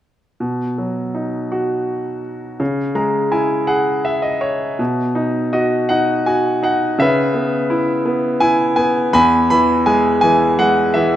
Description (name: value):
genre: classical, lyrical solo piano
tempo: 83 BPM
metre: 3/4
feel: rubato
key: B major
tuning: A4 = 440 Hz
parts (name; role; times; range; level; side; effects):
- bright concert grand piano; solo; 0.4-11.2 s; E2 to B5; -14 LUFS; equal; none
room: moderate concert hall reverb, RT60 2.3 s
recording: minimal, uncompressed stereo recording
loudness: -14 LUFS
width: side -12 dB against mid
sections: 0.4-4.8 A section; 4.8-11.2 B section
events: grand piano fill 2.6-4.8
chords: 0.4 B; 2.6 C#m; 4.8 B; 7.0 C#m7; 9.1 E